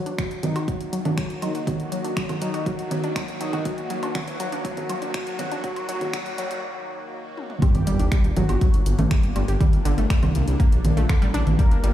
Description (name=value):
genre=melodic techno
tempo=121 BPM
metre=4/4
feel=straight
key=G harmonic minor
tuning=A4 = 439 Hz
part: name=fat analog lead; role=melody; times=0.0-11.9 s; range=Eb4 to Bb4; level=-31 LUFS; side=left 1 dB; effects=chorus, phaser, cassette tape, dub echo
part: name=evolving wavetable pad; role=sustained chords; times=0.2-11.9 s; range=D3 to Gb4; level=-34 LUFS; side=left 1 dB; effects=phaser, built-in reverb, sidechain pumping
part: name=wide unison pluck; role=arpeggios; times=0.0-11.9 s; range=D3 to G4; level=-30 LUFS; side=equal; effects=sidechain pumping, ping-pong delay
part: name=riser and sub drop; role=sound effects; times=0.0-9.6 s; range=none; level=-34 LUFS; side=equal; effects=none
part: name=deep house drum kit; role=drums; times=0.1-11.9 s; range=congas, finger snaps, hi-hat, toms, woodblock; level=-29 LUFS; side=right 2 dB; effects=none
part: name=electronic kick drum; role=drums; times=0.2-11.7 s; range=none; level=-21 LUFS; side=equal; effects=none
part: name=swelling detuned saw bass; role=bass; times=7.7-11.9 s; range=G1 to C2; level=-22 LUFS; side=equal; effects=sidechain pumping
room=light reverb, digital ambience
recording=played on a big sound system in a bare room, large studio reverb, high-pass filter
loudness=-20 LUFS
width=side -12 dB against mid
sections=0.0-7.6 A section; 7.6-11.9 B section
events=build-up 0.0-7.6; riser 0.0-6.6; filter sweep on synth arpeggio sound 0.0-7.6; filter sweep on analog synth lead 0.0-7.6; filter sweep 0.0-7.6; break 6.6-7.6; drum fill 7.4; drop 7.6-11.9; impact 7.6-9.6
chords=0.0 Ebm; 7.6 Gm